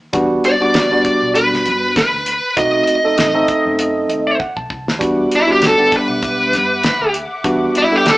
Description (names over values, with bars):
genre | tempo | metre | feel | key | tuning
straight-eighth soul blues | 98 BPM | 4/4 | swing 55% on 16ths | unclear | A4 = 440 Hz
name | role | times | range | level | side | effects
barky tine electric piano | accompaniment | 0.1-8.2 s | G3 to A5 | -17 LUFS | equal | slow stereo tremolo
vintage muted fingered electric bass | bass | 0.1-8.2 s | A1 to G2 | -32 LUFS | equal | none
damped 70s drum kit | drums | 0.1-8.2 s | hi-hat, kick drum, snare drum | -19 LUFS | equal | none
smooth overdriven lead guitar | melody | 0.5-8.2 s | E4 to D#5 | -14 LUFS | equal | none
muted studio string section | sustained chords | 5.0-8.2 s | E5 to D6 | -27 LUFS | left 2 dB | none
room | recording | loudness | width
moderate large studio reverb, RT60 1.0 s | band playing live in one room, small speaker sound | -13 LUFS | side -19 dB against mid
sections
0.0-5.0 A section; 5.0-8.2 B section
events
tine electric piano fill 3.8-5.0; drum fill 4.4-5.0; lead electric guitar solo 5.0-8.2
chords
0.1 Em9 (rootless); 2.6 B7b9; 5.0 Em9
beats
| 0.14 0.75 1.36 1.97 | 2.58 3.19 3.80 4.41 | 5.01 5.62 6.23 6.84 | 7.45 8.06